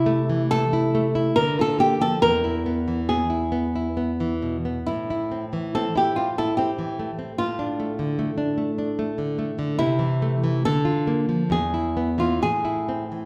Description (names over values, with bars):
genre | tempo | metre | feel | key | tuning
romantic duo for nylon-string guitar and classical guitar | 62-76 BPM | 3/4 | rubato | A minor | A4 = 440 Hz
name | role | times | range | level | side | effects
flamenco guitar | melody | 0.0-13.3 s | E4 to Bb4 | -26 LUFS | equal | none
nylon-string guitar | accompaniment | 0.0-13.3 s | E2 to F4 | -26 LUFS | equal | none
room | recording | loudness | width
wet recital hall reverb, RT60 1.4 s | recorded in a church or concert hall | -24 LUFS | mono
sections
0.0-13.3 A section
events
none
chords
0.0 Am/C; 1.4 Bb/D; 2.2 E; 4.9 Am; 7.4 Dm/A; 9.8 Am/C; 10.7 Bb/D; 11.5 E; 12.4 Am